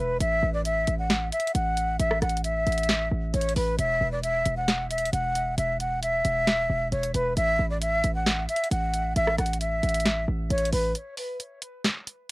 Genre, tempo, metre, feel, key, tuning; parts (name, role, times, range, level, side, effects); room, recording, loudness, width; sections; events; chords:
hip hop, trap; 134 BPM; 4/4; half-time; A4 = 440 Hz
breathy silver concert flute; melody; 0.0-10.9 s; B4 to F#5; -26 LUFS; equal; analog delay
hard-hitting 808-style bass; bass; 0.0-10.9 s; E1 to A1; -28 LUFS; equal
trap drum kit; drums; 0.2-12.2 s; hi-hat, rim click, snare drum; -28 LUFS; equal; cassette tape
little or no reverb; home recording on cassette; -23 LUFS; side -22 dB against mid
0.0-10.9 A section; 10.9-12.3 B section
break 10.9-12.3
0.2 A5; 3.8 Esus2; 7.4 A5; 10.9 N.C.